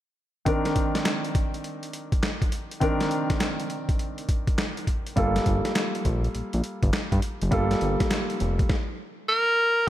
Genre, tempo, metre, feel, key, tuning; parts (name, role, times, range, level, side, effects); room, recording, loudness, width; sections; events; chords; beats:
R&B, new jack swing; 102 BPM; 4/4; swing 65% on 16ths; G minor; A4 = 439 Hz
clear baby grand piano; accompaniment; 0.5-9.9 s; Eb3 to Bb4; -28 LUFS; equal
boom bap sampler-style drum kit; drums; 0.5-8.9 s; handclaps, hi-hat, kick drum, snare drum; -26 LUFS; equal; gated reverb
fat analog bass; bass; 5.2-8.6 s; F1 to G2; -25 LUFS; equal
warm tenor saxophone; melody; 9.3-9.9 s; Bb4; -19 LUFS; equal
light reverb, studio reverb; -23 LUFS; side -13 dB against mid
0.5-9.9 A section
0.5 Cm9; 5.2 Gm9
| 0.47 1.05 1.64 2.23 | 2.82 3.41 4.00 4.58 | 5.17 5.76 6.35 6.94 | 7.52 8.11 8.70 9.29 | 9.88